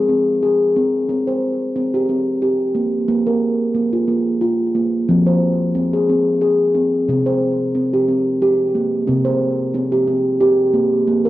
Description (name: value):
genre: world meditative, meditative tuned percussion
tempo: 90 BPM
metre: 3/4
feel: swing 53% on 16ths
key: unclear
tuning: A4 = 440 Hz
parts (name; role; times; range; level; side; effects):
- steel tongue drum; solo; 0.0-11.3 s; C3 to C5; -15 LUFS; equal; tape echo
room: wet recital hall reverb, RT60 1.4 s, studio reverb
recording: worn, warbling old tape, cassette tape, warbly pitch drift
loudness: -15 LUFS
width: side -15 dB against mid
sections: 0.0-9.1 A section; 9.1-11.3 B section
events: none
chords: 0.0 Ab; 1.1 C5; 3.1 Bb5; 5.1 Fm; 7.1 C5